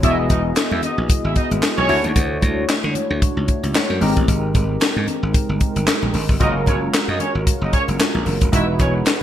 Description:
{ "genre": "early-eighties boogie funk", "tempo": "113 BPM", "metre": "4/4", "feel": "swing 56% on 16ths", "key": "unclear", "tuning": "A4 = 440 Hz", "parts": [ { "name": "mellow horn section", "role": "second line", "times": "0.0-2.0, 6.4-8.9 s", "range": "C#4 to E5", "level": "-24 LUFS", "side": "right 1 dB", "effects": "none" }, { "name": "funky polysynth comp", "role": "accompaniment", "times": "0.0-9.2 s", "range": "G#3 to D#5", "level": "-23 LUFS", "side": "left 1 dB", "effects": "chorus" }, { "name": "slap bass", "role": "bass", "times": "0.0-9.1 s", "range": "E1 to D3", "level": "-21 LUFS", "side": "equal", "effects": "none" }, { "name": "tight funk drum kit", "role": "drums", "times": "0.0-9.2 s", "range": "handclaps, hi-hat, kick drum, snare drum", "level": "-18 LUFS", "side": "equal", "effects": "gated reverb" }, { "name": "congas", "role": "percussion", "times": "0.0-9.2 s", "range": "none", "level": "-31 LUFS", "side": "right 3 dB", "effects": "none" } ], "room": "light reverb, small room ambience", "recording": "bright 1980s-style digital production", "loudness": "-16 LUFS", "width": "side -11 dB against mid", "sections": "0.0-9.2 A section", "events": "none", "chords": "0.0 Emaj9; 1.9 Dmaj9; 4.0 G#maj9; 6.4 F#maj9; 8.5 Emaj9", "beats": "| 0.03 0.56 1.10 1.63 | 2.16 2.69 3.22 3.75 | 4.28 4.81 5.34 5.88 | 6.41 6.94 7.47 8.00 | 8.53 9.06" }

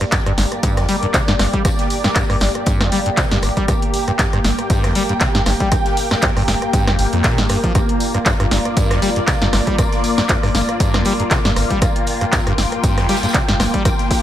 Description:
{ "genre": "acid house", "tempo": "118 BPM", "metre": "4/4", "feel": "swing 55% on 16ths", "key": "G minor", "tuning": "A4 = 440 Hz", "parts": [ { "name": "lush unison pad", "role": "sustained chords", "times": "0.0-14.2 s", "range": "Bb3 to G5", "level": "-21 LUFS", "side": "left 1 dB", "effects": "chorus, phaser, sidechain pumping" }, { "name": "acid bass, saw", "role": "riff", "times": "0.0-13.9 s", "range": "G1 to G3", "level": "-20 LUFS", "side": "equal", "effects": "overdrive, lush chorus, tape echo" }, { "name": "punchy analog drum machine", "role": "drums", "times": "0.0-14.2 s", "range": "handclaps, hi-hat, rim click, snare drum", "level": "-20 LUFS", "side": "equal", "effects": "none" }, { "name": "electronic kick drum", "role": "drums", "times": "0.1-14.2 s", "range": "none", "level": "-19 LUFS", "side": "equal", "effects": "overdrive" }, { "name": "snare drum and tambourine", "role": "drums", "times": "0.1-14.2 s", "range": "none", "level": "-31 LUFS", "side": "equal", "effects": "none" } ], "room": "light reverb, small room ambience", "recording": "none", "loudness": "-14 LUFS", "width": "side -12 dB against mid", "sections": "0.0-14.2 A section", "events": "none", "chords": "0.0 Gm", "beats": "0.12 0.63 1.14 | 1.65 2.16 2.67 3.17 | 3.68 4.19 4.70 5.21 | 5.72 6.22 6.73 7.24 | 7.75 8.26 8.77 9.28 | 9.78 10.29 10.80 11.31 | 11.82 12.33 12.84 13.34 | 13.85" }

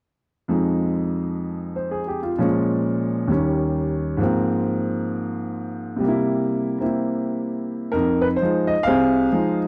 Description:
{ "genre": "solo jazz", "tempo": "129 BPM", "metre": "4/4", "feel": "swing 66% on 8ths, rubato", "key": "F minor", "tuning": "A4 = 440 Hz", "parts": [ { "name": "clear upright piano", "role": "solo", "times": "0.5-9.7 s", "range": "C2 to F5", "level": "-22 LUFS", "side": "equal", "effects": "none" } ], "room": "light reverb", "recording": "dry, close 1970s-style studio recording", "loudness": "-22 LUFS", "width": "mono", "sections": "0.5-7.9 A section; 7.9-9.7 B section", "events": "none", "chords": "0.5 Fm7; 2.4 Bbm7; 3.3 Eb7; 4.2 Ab69; 6.0 C7; 7.9 Fm7", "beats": "| 0.49 0.96 1.44 1.90 | 2.37 2.83 3.28 3.74 | 4.19 4.65 5.11 5.56 | 6.01 6.48 6.96 7.45 | 7.93 8.40 8.87 9.33" }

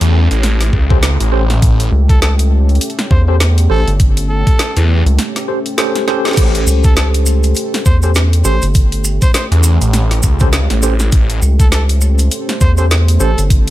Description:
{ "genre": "glitch hop", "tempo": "101 BPM", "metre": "4/4", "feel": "swing 58% on 16ths", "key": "unclear", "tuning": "A4 = 438 Hz", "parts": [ { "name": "dark analog pad", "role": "sustained chords", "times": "0.0-13.7 s", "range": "A3 to B#4", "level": "-24 LUFS", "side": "right 1 dB", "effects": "chorus, sidechain pumping" }, { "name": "phased detuned saw bass", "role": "bass", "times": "0.0-11.4 s", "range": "A1 to E2", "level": "-12 LUFS", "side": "equal", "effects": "phaser, tube saturation" }, { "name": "drum and bass drum kit", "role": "drums", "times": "0.0-13.7 s", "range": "crash cymbal, hi-hat, snare drum", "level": "-18 LUFS", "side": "equal", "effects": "overdrive, studio reverb" }, { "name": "electronic kick drum", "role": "drums", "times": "0.7-13.6 s", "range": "none", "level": "-11 LUFS", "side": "equal", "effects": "overdrive, studio reverb" }, { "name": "bright tine electric piano", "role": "stabs", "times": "0.9-13.3 s", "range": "C#4 to B#4", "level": "-19 LUFS", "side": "right 1 dB", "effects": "medium stereo tremolo, vintage 12-bit sampler grit, sidechain pumping, ping-pong delay" }, { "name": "rubbery square bass", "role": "bass", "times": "1.9-13.7 s", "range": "G1 to E2", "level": "-12 LUFS", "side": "equal", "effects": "none" }, { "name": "clear trumpet", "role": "melody", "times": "2.1-13.4 s", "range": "A4 to B#4", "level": "-24 LUFS", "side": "equal", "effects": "ping-pong delay" }, { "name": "maracas", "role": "percussion", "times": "6.4-13.6 s", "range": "none", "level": "-23 LUFS", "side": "right 1 dB", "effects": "none" } ], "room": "digital ambience", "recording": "none", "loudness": "-10 LUFS", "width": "side -15 dB against mid", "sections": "0.0-13.7 A section", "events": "break 5.2-6.4; drum fill 6.1", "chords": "0.0 A7#9", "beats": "0.43 1.03 | 1.62 2.21 2.81 3.40 | 4.00 4.59 5.18 5.78 | 6.37 6.97 7.56 8.15 | 8.75 9.34 9.94 10.53 | 11.12 11.72 12.31 12.91 | 13.50" }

